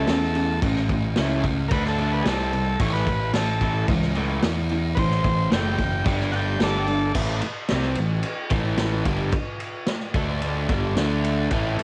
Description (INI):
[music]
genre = garage rock duo or trio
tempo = 110 BPM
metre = 4/4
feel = straight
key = A mixolydian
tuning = A4 = 437 Hz
[part]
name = combo organ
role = melody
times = 0.0-7.1 s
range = G#4 to G5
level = -30 LUFS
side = equal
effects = cassette tape
[part]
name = overdriven electric guitar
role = riff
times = 0.0-11.8 s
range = G2 to G4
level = -29 LUFS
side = equal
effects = cassette tape
[part]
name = fuzz picked electric bass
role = bass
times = 0.0-11.8 s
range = F#1 to E2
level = -28 LUFS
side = equal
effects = overdrive, tube saturation
[part]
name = vintage drum kit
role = drums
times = 0.1-11.8 s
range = crash cymbal, kick drum, ride cymbal, snare drum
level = -28 LUFS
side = equal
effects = cassette tape
[sound]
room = moderate booth ambience, RT60 0.2 s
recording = home recording on cassette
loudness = -23 LUFS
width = mono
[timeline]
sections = 0.0-7.1 A section; 7.1-11.8 B section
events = transistor combo organ solo 0.0-7.1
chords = 0.0 A; 1.7 D5; 2.3 C5; 2.8 A; 6.1 G5; 7.1 A5; 10.2 D5; 10.7 G5; 11.0 D5